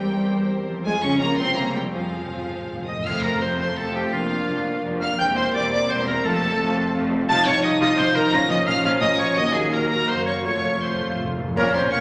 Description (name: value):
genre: classical, dramatic, fast romantic movement for symphony orchestra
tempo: 157-177 BPM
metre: 3/4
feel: rubato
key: F minor, F major from 3.1 s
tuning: A4 = 441 Hz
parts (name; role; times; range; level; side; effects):
- rich symphonic violin section; melody; 0.0-12.0 s; F5 to Bb6; -29 LUFS; equal; none
- rich symphonic violin section; second line; 0.0-12.0 s; Db4 to Bb5; -32 LUFS; equal; none
- rich symphonic viola section; accompaniment; 0.0-12.0 s; F3 to A4; -34 LUFS; equal; none
- mellow French horn section; sustained chords; 0.0-12.0 s; F3 to Gb4; -28 LUFS; equal; none
- concert harp; arpeggios; 0.0-12.0 s; F2 to Bb5; -34 LUFS; equal; none
- rich symphonic cello section; bass; 0.0-12.0 s; Eb2 to Db4; -34 LUFS; equal; none
- rich symphonic double bass section; bass; 0.0-12.0 s; E1 to F2; -36 LUFS; equal; none
- timpani; percussion; 1.9-3.0, 6.2-11.6 s; F2 to Bb2; -39 LUFS; equal; none
- bright oboe; second line; 2.9-11.2 s; F4 to Bb5; -29 LUFS; equal; none
- mellow hollow silver concert flute; second line; 2.9-12.0 s; F4 to Bb5; -31 LUFS; equal; none
- clash cymbals and concert bass drum; percussion; 3.1-3.7, 11.6-12.0 s; none; -42 LUFS; equal; none
- mellow clarinet; second line; 11.6-12.0 s; Db5 to F5; -26 LUFS; equal; none
- warm trombone section; sustained chords; 11.6-11.7 s; none; barely audible; none; none
- dark trumpet section; stabs; 11.6-11.7 s; Bb4; -28 LUFS; equal; none
room: wet scoring stage reverb, RT60 1.6 s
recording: none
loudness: -22 LUFS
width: mono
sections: 0.0-3.1 A section; 3.1-11.6 B section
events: timpani fill 1.9-3.1, 10.4-11.6; band accent 3.1-3.4, 11.6-11.9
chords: 0.0 C7/E; 0.9 Fm; 1.2 Dbmaj7; 1.6 C7b9; 1.9 Fm; 3.1 F; 4.1 Bb/F; 5.2 C7/E; 6.2 F; 7.3 F7/C; 8.3 Bbm; 9.4 Ebm; 10.4 F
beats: 0.17 0.52 | 0.87 1.22 1.57 | 1.95 2.32 2.69 | 3.06 3.42 3.78 | 4.13 4.49 4.84 | 5.19 5.55 5.90 | 6.25 6.60 6.95 | 7.29 7.63 7.97 | 8.32 8.67 9.02 | 9.37 9.72 10.08 | 10.45 10.82 11.20 | 11.57 11.92